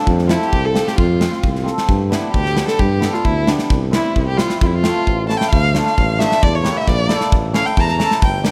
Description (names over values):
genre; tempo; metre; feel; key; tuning
klezmer; 132 BPM; 2/4; straight; F major, D harmonic minor from 5.5 s; A4 = 439 Hz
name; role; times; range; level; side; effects
dark violin; melody; 0.0-8.5 s; D4 to Bb5; -23 LUFS; equal; none
mellow tuba; bass; 0.1-8.5 s; G1 to G2; -22 LUFS; equal; none
gated 80s drum kit; drums; 0.1-8.5 s; kick drum, snare drum; -21 LUFS; equal; none
cimbalom; accompaniment; 0.3-8.5 s; G3 to C5; -24 LUFS; equal; none
room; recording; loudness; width
light reverb; none; -17 LUFS; mono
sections
0.0-5.5 A section; 5.5-8.5 B section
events
drum fill 1.7, 5.3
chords
0.0 F5; 1.9 G; 3.7 C; 4.6 F; 5.1 A; 5.5 Dm; 6.4 E(b5, no3); 7.3 A